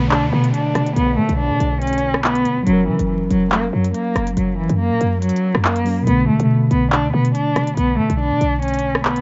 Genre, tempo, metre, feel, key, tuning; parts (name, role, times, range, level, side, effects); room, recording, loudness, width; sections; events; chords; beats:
hip hop, drill; 141 BPM; 4/4; half-time; B minor; A4 = 440 Hz
warm cello; melody; 0.0-9.2 s; E3 to D4; -22 LUFS; equal; low-pass filter, tape echo
mellow tine electric piano; accompaniment; 0.0-9.2 s; B2 to A#4; -23 LUFS; equal; low-pass filter
short 808-style bass; bass; 0.0-9.2 s; F#1 to D3; -24 LUFS; equal
downlifter; sound effects; 0.0-2.7 s; -37 LUFS; equal
drill drum kit; drums; 0.1-9.2 s; handclaps, hi-hat, rim click; -24 LUFS; equal
moderate small room reverb, RT60 0.5 s; dark, warm production, vinyl crackle, nothing above 7.7 kHz; -18 LUFS; mono
0.0-9.2 A section
0.0 Bm7; 2.7 F#; 6.1 Bm7
0.11 0.54 | 0.96 1.39 1.82 2.24 | 2.67 3.09 3.52 3.94 | 4.37 4.79 5.22 5.64 | 6.07 6.50 6.92 7.35 | 7.77 8.20 8.62 9.05